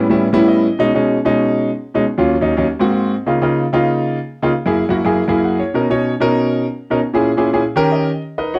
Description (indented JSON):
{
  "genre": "jazz",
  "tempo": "194 BPM",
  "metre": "4/4",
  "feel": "straight",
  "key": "unclear",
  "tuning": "A4 = 440 Hz",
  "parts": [
    { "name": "clear concert grand piano", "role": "solo", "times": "0.0-8.6 s", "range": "D#2 to G5", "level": "-16 LUFS", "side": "equal", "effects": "none" }
  ],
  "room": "moderate studio reverb, RT60 0.6 s",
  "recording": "dark, warm production",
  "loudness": "-16 LUFS",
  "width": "mono",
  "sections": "0.0-8.2 A section",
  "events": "grand piano fill 0.3-0.8, 5.3-5.8, 7.6-8.2",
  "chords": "0.0 A9; 0.8 B6; 2.0 D#m7; 2.7 G#7; 3.3 C#6; 4.5 F#7; 5.8 Bmaj7; 7.0 A#m7b5; 7.6 D#7"
}